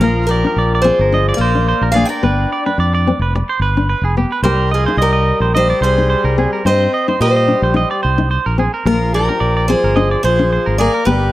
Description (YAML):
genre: highlife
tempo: 109 BPM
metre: 4/4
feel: swing 54% on 16ths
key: C minor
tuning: A4 = 437 Hz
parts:
  - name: picked steel-string acoustic guitar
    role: melody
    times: 0.0-11.3 s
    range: F4 to G5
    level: -17 LUFS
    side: equal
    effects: none
  - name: mellow alto saxophone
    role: second line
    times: 0.0-11.3 s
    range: F3 to D4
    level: -24 LUFS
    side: left 6 dB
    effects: none
  - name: nylon-string guitar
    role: accompaniment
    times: 0.0-11.3 s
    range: Bb3 to Eb4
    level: -20 LUFS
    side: left 4 dB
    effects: none
  - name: clean electric guitar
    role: arpeggios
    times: 0.0-11.3 s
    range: G4 to Eb5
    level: -19 LUFS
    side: right 4 dB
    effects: none
  - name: fingered electric bass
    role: bass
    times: 0.0-11.3 s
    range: F1 to Bb2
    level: -16 LUFS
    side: equal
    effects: none
room: light reverb, small room ambience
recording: none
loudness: -12 LUFS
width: side -15 dB against mid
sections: 0.0-11.3 A section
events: none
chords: 0.0 Bbadd9; 2.2 G; 4.4 Cm; 8.9 Bbadd9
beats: | 0.02 0.57 1.12 1.68 | 2.23 2.78 3.33 3.89 | 4.44 4.99 5.54 6.09 | 6.65 7.20 7.75 8.30 | 8.85 9.41 9.96 10.51 | 11.06